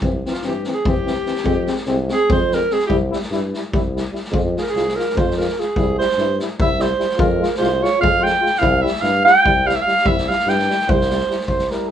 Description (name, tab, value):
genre	balkan folk, Balkan brass band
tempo	293 BPM (eighths)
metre	7/8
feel	straight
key	unclear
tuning	A4 = 442 Hz
part	mellow euphonium	accompaniment	0.0-11.9 s	E3 to Ab3	-26 LUFS	right 2 dB	none
part	warm trombone	accompaniment	0.0-11.9 s	C4 to F4	-25 LUFS	left 4 dB	none
part	warm tuba	bass	0.0-11.7 s	C2 to G2	-23 LUFS	left 1 dB	none
part	street-band drum kit	percussion	0.0-11.8 s	kick drum, snare drum	-23 LUFS	left 1 dB	none
part	warm alto saxophone	second line	0.3-11.5 s	F4 to G5	-18 LUFS	right 2 dB	none
part	dark cornet	melody	11.5-11.9 s	Bb4 to C5	-22 LUFS	right 4 dB	none
room	moderate studio reverb, RT60 0.5 s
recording	band playing live in one room, nothing above 10.9 kHz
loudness	-16 LUFS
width	side -9 dB against mid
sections	0.0-11.5 A section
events	alto saxophone solo 0.0-11.5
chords	0.0 C; 1.5 Fm; 2.9 C; 4.3 Fm; 5.8 C; 7.2 Fm; 8.6 C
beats	| 0.03 0.24 0.44 0.65 0.85 1.06 1.26 | 1.47 1.67 1.88 2.08 2.29 2.49 2.69 | 2.90 3.10 3.31 3.51 3.72 3.92 4.13 | 4.33 4.54 4.74 4.95 5.15 5.35 5.56 | 5.76 5.97 6.17 6.38 6.58 6.79 6.99 | 7.19 7.40 7.60 7.81 8.01 8.22 8.42 | 8.62 8.83 9.03 9.24 9.44 9.65 9.85 | 10.05 10.26 10.46 10.67 10.87 11.08 11.28 | 11.49 11.69 11.90